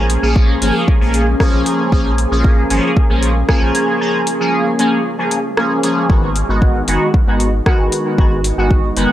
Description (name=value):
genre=dub techno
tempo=115 BPM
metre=4/4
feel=straight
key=unclear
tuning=A4 = 438 Hz
part: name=deep dark ambient pad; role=sustained chords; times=0.1-9.1 s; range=C#4 to B4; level=-25 LUFS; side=left 2 dB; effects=chorus, built-in reverb, sidechain pumping
part: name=resonant sweep polysynth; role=stabs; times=0.0-9.1 s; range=D#3 to G#4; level=-16 LUFS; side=equal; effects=chorus, phaser, sidechain pumping, dub echo
part: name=warm sub bass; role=bass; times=0.0-9.1 s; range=F#1 to A#1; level=-18 LUFS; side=equal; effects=tube saturation, sidechain pumping
part: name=flickering grainy texture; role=texture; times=0.0-9.1 s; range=G#3 to D#5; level=-29 LUFS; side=left 1 dB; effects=none
part: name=soft vintage rhythm box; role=drums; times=0.1-9.1 s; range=hi-hat, rim click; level=-21 LUFS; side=equal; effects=dub echo
part: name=electronic kick drum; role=drums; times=0.4-8.8 s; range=none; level=-13 LUFS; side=equal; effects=none
room=light reverb, digital ambience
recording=dry, gritty hardware recording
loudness=-12 LUFS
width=side -13 dB against mid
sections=0.0-9.1 A section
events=none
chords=0.0 A#m7; 6.1 G#m7